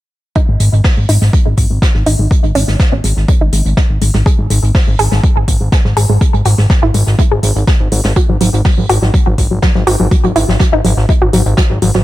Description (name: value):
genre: progressive house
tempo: 123 BPM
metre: 4/4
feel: straight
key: unclear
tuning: A4 = 440 Hz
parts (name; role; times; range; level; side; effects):
- analog pluck; arpeggios; 0.4-12.0 s; F#3 to G#4; -17 LUFS; equal; chorus, sidechain pumping, digital delay
- electronic kick drum; drums; 0.4-11.7 s; none; -11 LUFS; equal; small room ambience
- jazz brush drum kit; drums; 0.4-12.0 s; hi-hat, snare drum; -24 LUFS; right 2 dB; high-pass filter on hats, small room ambience, high-pass filter on snare, high-pass filter on room
- fat analog bass; bass; 0.5-12.0 s; G#1; -12 LUFS; equal; tube saturation, sidechain pumping
- electronic hi-hat; drums; 0.6-11.9 s; none; -22 LUFS; left 2 dB; sidechain pumping on hats, small room ambience
room: small room ambience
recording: none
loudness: -9 LUFS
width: side -16 dB against mid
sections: 0.4-12.0 A section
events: none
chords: 0.4 N.C.; 8.2 G#7(no3)